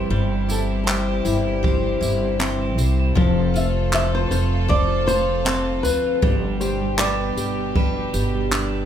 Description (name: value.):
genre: acoustic pop.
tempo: 78 BPM.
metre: 4/4.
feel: swing 55% on 16ths.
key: unclear.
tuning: A4 = 441 Hz.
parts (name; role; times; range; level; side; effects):
flamenco guitar; melody; 0.0-8.9 s; G4 to E5; -26 LUFS; left 1 dB; none.
picked steel-string acoustic guitar; accompaniment; 0.0-8.9 s; F3 to C5; -24 LUFS; left 4 dB; none.
warm studio string section; sustained chords; 0.0-8.9 s; B2 to A4; -31 LUFS; right 1 dB; none.
twelve-string electric guitar; arpeggios; 0.0-8.9 s; F3 to A4; -30 LUFS; right 7 dB; none.
upright bass; bass; 0.0-8.9 s; F1 to D2; -23 LUFS; right 1 dB; none.
jazz brush drum kit; drums; 0.5-8.7 s; handclaps, kick drum, tambourine; -24 LUFS; right 1 dB; none.
room: light reverb.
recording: none.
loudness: -18 LUFS.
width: side -9 dB against mid.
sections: 0.0-8.9 A section.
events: none.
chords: 0.0 C/G; 3.2 F; 6.2 G.